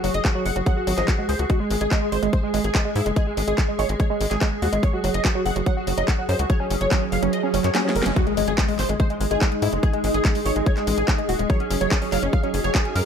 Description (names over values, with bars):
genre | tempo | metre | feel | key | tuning
psychedelic trance | 144 BPM | 4/4 | straight | unclear | A4 = 440 Hz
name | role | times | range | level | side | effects
wide unison lead | melody | 0.0-13.0 s | G#3 to F#5 | -27 LUFS | left 1 dB | phaser, sidechain pumping, digital delay
swarming drone | sustained chords | 0.0-13.1 s | G#4 | -30 LUFS | equal | built-in reverb, sidechain pumping
woody wave-folded pluck | riff | 0.0-13.0 s | E#3 to G#4 | -27 LUFS | moving between left 11 dB and right 10 dB | chorus, auto-pan, sidechain pumping, ping-pong delay
tight sequencer bass | bass | 0.0-13.0 s | D#1 to G#2 | -25 LUFS | equal | none
drum and bass drum kit | drums | 0.0-13.0 s | handclaps, hi-hat, snare drum | -28 LUFS | equal | overdrive, studio reverb
electronic kick drum | drums | 0.2-12.8 s | none | -21 LUFS | equal | overdrive, studio reverb
riser and impact | sound effects | 7.0-9.8 s | none | -33 LUFS | equal | none
granular cloud pad | texture | 9.2-13.1 s | D#4 to F#5 | -30 LUFS | right 1 dB | built-in reverb, sidechain pumping
room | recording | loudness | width
little or no reverb | none | -19 LUFS | side -7 dB against mid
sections
0.0-8.2 A section; 8.2-13.1 B section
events
kick drops out 7.3-8.2; drum fill 7.7-8.2; band accent 8.0; drop 8.2-13.1; impact 8.2-9.8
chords
0.0 F#5; 1.5 G#5; 4.8 F#5; 8.2 G#5; 11.5 F#5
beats
0.25 0.66 1.08 | 1.50 1.91 2.33 2.75 | 3.16 3.58 4.00 4.41 | 4.83 5.25 5.66 6.08 | 6.50 6.91 7.33 7.75 | 8.16 8.58 9.00 9.41 | 9.83 10.25 10.66 11.08 | 11.50 11.91 12.33 12.75